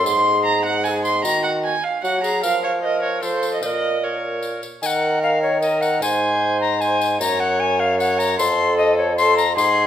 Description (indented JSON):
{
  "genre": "classical, renaissance-style consort dance",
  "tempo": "152 BPM",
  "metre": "3/4",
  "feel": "straight",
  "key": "unclear",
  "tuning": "A4 = 440 Hz",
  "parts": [
    { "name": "tenor recorder", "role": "melody", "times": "0.0-9.9 s", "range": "Gb4 to C6", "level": "-21 LUFS", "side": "left 3 dB", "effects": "none" },
    { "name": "warm violin", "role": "second line", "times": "0.0-9.9 s", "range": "Ab4 to C6", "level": "-22 LUFS", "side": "right 2 dB", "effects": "none" },
    { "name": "mellow bassoon", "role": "bass", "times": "0.0-9.9 s", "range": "F2 to Gb3", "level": "-22 LUFS", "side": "right 1 dB", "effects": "none" },
    { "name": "tambourine", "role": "percussion", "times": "0.1-9.8 s", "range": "none", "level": "-32 LUFS", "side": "left 6 dB", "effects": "none" }
  ],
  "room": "wet recital hall reverb, RT60 1.3 s",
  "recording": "recorded in a church or concert hall",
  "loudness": "-17 LUFS",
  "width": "side -10 dB against mid",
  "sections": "0.0-4.8 A section; 4.8-9.9 A section",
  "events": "none",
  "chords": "0.1 Ab; 1.2 Ebm; 2.4 Fsus4; 3.6 Bbm; 4.8 Ebm; 6.0 Ab; 7.2 Gb5; 8.4 F",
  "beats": "| 0.06 0.45 0.85 | 1.25 1.64 2.04 | 2.43 2.83 3.22 | 3.62 4.03 4.43 | 4.83 5.23 5.62 | 6.02 6.42 6.81 | 7.21 7.60 8.00 | 8.39 8.78 9.18 | 9.57"
}